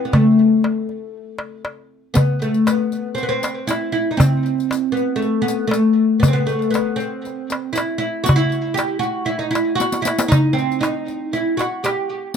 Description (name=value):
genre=Arabic maqam ensemble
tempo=118 BPM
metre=4/4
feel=straight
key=unclear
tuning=A4 = 441 Hz
part: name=oud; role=melody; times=0.0-12.1 s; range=A3 to G4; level=-18 LUFS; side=left 1 dB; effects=tape echo
part: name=darbuka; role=percussion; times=0.1-12.0 s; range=none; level=-18 LUFS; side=equal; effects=none
part: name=riq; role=percussion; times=2.2-12.4 s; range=none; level=-28 LUFS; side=left 3 dB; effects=none
room=light reverb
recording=close, detailed microphones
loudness=-16 LUFS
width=side -7 dB against mid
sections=0.0-2.2 A section; 2.2-12.4 B section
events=drum fill 9.8-10.3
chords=none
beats=| 0.12 0.63 1.14 1.65 | 2.15 2.66 3.17 3.68 | 4.19 4.70 5.21 5.71 | 6.22 6.73 7.24 7.75 | 8.26 8.77 9.28 9.79 | 10.30 10.82 11.33 11.84 | 12.35